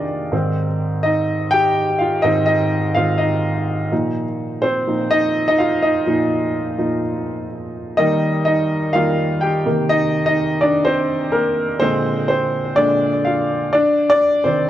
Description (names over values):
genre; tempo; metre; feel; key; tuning
pop; 125 BPM; 4/4; swing 56% on 16ths; unclear; A4 = 440 Hz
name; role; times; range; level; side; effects
warm grand piano; solo; 0.0-14.7 s; Ab2 to G5; -16 LUFS; equal; tape echo
room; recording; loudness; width
moderate echo chamber reverb, RT60 1.8 s; worn, warbling old tape, cassette tape, warbly pitch drift; -16 LUFS; side -12 dB against mid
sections
0.0-8.0 A section; 8.0-14.7 B section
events
grand piano solo 0.0-8.0, 8.0-14.7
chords
0.3 Ab; 3.9 Bbsus4; 8.0 Ebadd9; 9.7 Cm7; 11.8 Bb7; 13.7 Ab (rootless)